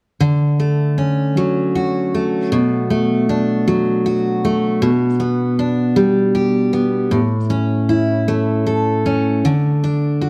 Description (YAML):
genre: pop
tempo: 52 BPM (dotted quarters)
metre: 6/8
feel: straight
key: D major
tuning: A4 = 440 Hz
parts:
  - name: picked steel-string acoustic guitar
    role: solo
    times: 0.2-10.3 s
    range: A2 to A4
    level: -17 LUFS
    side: equal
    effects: none
room: light reverb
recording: none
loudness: -17 LUFS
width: mono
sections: 0.2-10.3 A section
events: none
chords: 0.2 Dmaj7; 2.5 Bm7; 4.8 G/B; 7.1 A; 9.4 D5